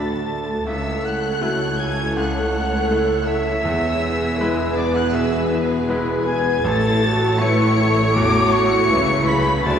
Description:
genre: cinematic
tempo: 80 BPM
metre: 4/4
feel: rubato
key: A major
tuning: A4 = 440 Hz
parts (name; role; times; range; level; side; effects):
- warm symphonic violin section; melody; 0.0-9.8 s; D6 to D7; -28 LUFS; left 3 dB; none
- bright concert flute; second line; 0.0-9.8 s; D5 to D6; -26 LUFS; left 2 dB; none
- bright oboe; second line; 0.0-9.8 s; D5 to D6; -27 LUFS; right 1 dB; none
- rich symphonic violin section; second line; 0.0-9.8 s; G#4 to D5; -27 LUFS; left 2 dB; none
- bright grand piano; accompaniment; 0.0-9.8 s; A1 to C#5; -26 LUFS; left 1 dB; none
- warm symphonic viola section; accompaniment; 0.0-9.8 s; F#3 to F#4; -25 LUFS; right 2 dB; none
- mellow French horn section; sustained chords; 0.0-9.8 s; E4 to B4; -24 LUFS; equal; none
- rich symphonic cello section; bass; 0.0-9.8 s; C#2 to D3; -26 LUFS; right 1 dB; none
- rich symphonic double bass section; bass; 0.0-9.8 s; E1 to D2; -26 LUFS; right 1 dB; none
room: wet scoring stage reverb, RT60 2.0 s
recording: heard from further back in the room, vinyl crackle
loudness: -17 LUFS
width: side -8 dB against mid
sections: 0.0-9.8 A section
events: none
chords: 0.0 D; 0.7 A/C#; 3.7 E; 6.6 A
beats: | 0.66 1.42 2.17 2.91 | 3.65 4.40 5.14 5.89 | 6.65 7.41 8.16 8.91 | 9.66

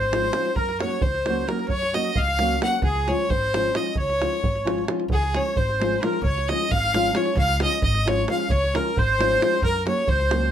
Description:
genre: balkan folk, Balkan wedding band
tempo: 265 BPM (eighths)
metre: 5/8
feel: straight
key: Db major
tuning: A4 = 440 Hz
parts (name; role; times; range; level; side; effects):
- clear fiddle; melody; 0.0-10.5 s; Ab4 to Gb5; -25 LUFS; left 1 dB; none
- accordion; second line; 0.0-10.5 s; Ab4 to Gb5; -27 LUFS; right 2 dB; light tremolo tuning
- upright bass; bass; 0.0-10.5 s; Ab1 to Gb2; -27 LUFS; equal; none
- davul; percussion; 0.0-10.4 s; none; -27 LUFS; right 1 dB; none
- nylon-string guitar; accompaniment; 0.1-10.5 s; F3 to Gb4; -27 LUFS; left 2 dB; none
room: light reverb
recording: close, detailed microphones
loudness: -20 LUFS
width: side -9 dB against mid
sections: 0.0-5.1 A section; 5.1-10.5 A section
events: none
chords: 0.0 Db; 0.6 Gb; 2.8 Db; 9.6 Gb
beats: 0.10 0.32 | 0.55 0.78 1.01 1.23 1.46 | 1.69 1.92 2.15 2.37 2.60 | 2.83 3.05 3.28 3.51 3.73 | 3.96 4.19 4.42 4.64 4.87 | 5.10 5.32 5.55 5.78 6.00 | 6.23 6.46 6.68 6.91 7.13 | 7.36 7.59 7.81 8.04 8.26 | 8.49 8.72 8.94 9.17 9.39 | 9.62 9.85 10.07 10.30

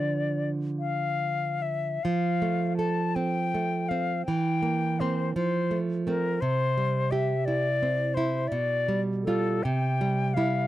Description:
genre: romantic duo for flute and classical guitar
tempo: 47-58 BPM (dotted quarters)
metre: 6/8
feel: rubato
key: F major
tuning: A4 = 439 Hz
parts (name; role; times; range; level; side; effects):
- silver concert flute; melody; 0.0-10.7 s; A4 to A5; -29 LUFS; left 4 dB; none
- nylon-string guitar; accompaniment; 0.0-10.7 s; B2 to A4; -27 LUFS; right 2 dB; none
room: light reverb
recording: dry, close 1970s-style studio recording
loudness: -25 LUFS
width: side -14 dB against mid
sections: 0.0-2.0 A section; 2.0-10.7 B section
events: none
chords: 0.0 Dm; 2.0 F; 4.3 C7/E; 5.3 F; 6.4 C; 8.5 G7/B; 9.6 C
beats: 0.78 | 2.03 3.14 | 4.25 5.35 | 6.41 7.46 | 8.50 9.64

